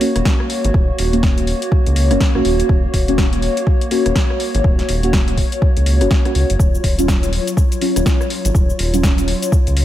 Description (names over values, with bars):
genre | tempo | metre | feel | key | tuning
deep house | 123 BPM | 4/4 | swing 60% on 16ths | unclear | A4 = 440 Hz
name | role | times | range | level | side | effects
hollow soft pad | sustained chords | 0.0-9.8 s | Gb3 to Db5 | -22 LUFS | left 1 dB | chorus, vintage 12-bit sampler grit, sidechain pumping
deep mellow chord stab | stabs | 0.0-9.2 s | Gb3 to Gb4 | -21 LUFS | equal | chorus, phaser, diffuse ambient delay
deep house drum kit | drums | 0.0-9.8 s | cabasa, hi-hat, rim click, snare drum | -24 LUFS | left 1 dB | overdrive
round analog bass | bass | 0.2-9.8 s | Eb1 to Db2 | -18 LUFS | equal | sidechain pumping
electronic kick drum | drums | 0.3-9.6 s | none | -15 LUFS | equal | overdrive
room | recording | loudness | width
light reverb, digital ambience | none | -14 LUFS | side -12 dB against mid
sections
0.0-9.8 A section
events
none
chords
0.0 Gb/Eb; 6.6 Ebm9